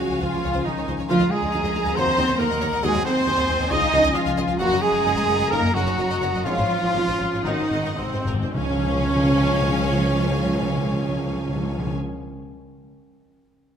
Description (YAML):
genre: classical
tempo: 105-139 BPM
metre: 4/4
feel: rubato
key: Db major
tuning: A4 = 440 Hz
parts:
  - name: warm symphonic violin section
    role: melody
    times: 0.0-11.9 s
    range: F5 to Bb5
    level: -34 LUFS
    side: left 5 dB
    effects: none
  - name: clear symphonic violin section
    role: second line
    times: 0.0-12.0 s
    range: Ab4 to Gb5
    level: -35 LUFS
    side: left 3 dB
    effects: none
  - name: rich symphonic viola section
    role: accompaniment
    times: 0.0-11.9 s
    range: C4 to Eb5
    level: -26 LUFS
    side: right 1 dB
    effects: none
  - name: mellow French horn section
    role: sustained chords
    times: 0.0-11.9 s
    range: F3 to Gb4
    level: -33 LUFS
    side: left 3 dB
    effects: none
  - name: concert harp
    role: arpeggios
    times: 0.0-12.5 s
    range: Gb2 to Bb5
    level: -31 LUFS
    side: left 6 dB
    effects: none
  - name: dark tuba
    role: bass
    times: 0.0-11.9 s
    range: Gb1 to Eb2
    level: -30 LUFS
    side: right 3 dB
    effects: none
  - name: rich studio double bass section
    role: bass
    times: 0.0-11.9 s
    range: Gb1 to Eb2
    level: -29 LUFS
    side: right 1 dB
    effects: none
  - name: warm symphonic cello section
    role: bass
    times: 0.0-11.9 s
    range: C3 to Eb4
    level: -27 LUFS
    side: right 2 dB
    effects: none
  - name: large flute ensemble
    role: second line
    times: 0.2-11.9 s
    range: C5 to Eb6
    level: -30 LUFS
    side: equal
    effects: none
  - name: clear trumpet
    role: stabs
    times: 0.2-11.9 s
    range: C4 to Eb5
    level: -28 LUFS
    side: right 1 dB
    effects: none
  - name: timpani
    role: percussion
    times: 6.5-11.9 s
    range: Ab2 to Db3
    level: -28 LUFS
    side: left 1 dB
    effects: none
room: moderate concert hall reverb, RT60 2.0 s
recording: none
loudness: -19 LUFS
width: side -8 dB against mid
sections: 0.0-8.5 A section; 8.5-13.0 B section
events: slowing down 3.7-8.5; timpani fill 7.5-8.5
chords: 0.0 Db; 1.1 Bb7/D; 2.0 Ebm; 2.8 Ab7/Eb; 3.7 Db; 4.6 Gbmaj7; 5.5 Ebm/Gb; 6.5 Db/Ab; 7.5 Ab7; 8.5 Db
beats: 0.23 0.66 | 1.10 1.53 1.97 2.40 | 2.84 3.28 3.72 4.16 | 4.60 5.05 5.52 5.98 | 6.46 6.95 7.45 7.98 | 8.54 9.10 9.65 10.21 | 10.76 11.31 11.87 12.42